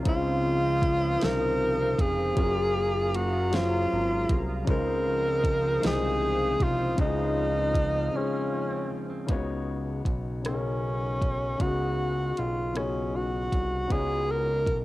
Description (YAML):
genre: slow six-eight R&B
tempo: 52 BPM (dotted quarters)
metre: 6/8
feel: straight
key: Db major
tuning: A4 = 437 Hz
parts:
  - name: semi-hollow electric guitar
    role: second line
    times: 0.0-9.4 s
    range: Db3 to F4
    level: -36 LUFS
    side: right 5 dB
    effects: none
  - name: warm grand piano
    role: accompaniment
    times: 0.0-14.8 s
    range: Db3 to Db5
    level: -33 LUFS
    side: left 5 dB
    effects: none
  - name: hollow soft pad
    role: sustained chords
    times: 0.0-9.3 s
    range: Ab4 to F6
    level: -40 LUFS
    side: equal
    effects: chorus
  - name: fat analog bass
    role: bass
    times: 0.0-14.8 s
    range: F1 to Db2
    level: -31 LUFS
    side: equal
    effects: none
  - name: breathy tenor saxophone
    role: melody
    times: 0.1-14.8 s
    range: Db4 to Bb4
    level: -27 LUFS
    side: equal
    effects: cassette tape
  - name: smooth R&B drum kit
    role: drums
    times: 0.1-14.8 s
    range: hi-hat, kick drum, rim click, snare drum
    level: -28 LUFS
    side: equal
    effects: cassette tape
room: light reverb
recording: home recording on cassette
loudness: -24 LUFS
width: side -17 dB against mid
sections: 0.0-9.3 A section; 9.3-14.8 B section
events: break 8.1-9.3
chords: 0.1 Dbmaj9; 2.4 Gbmaj9; 4.7 Dbmaj9; 9.3 Db9sus4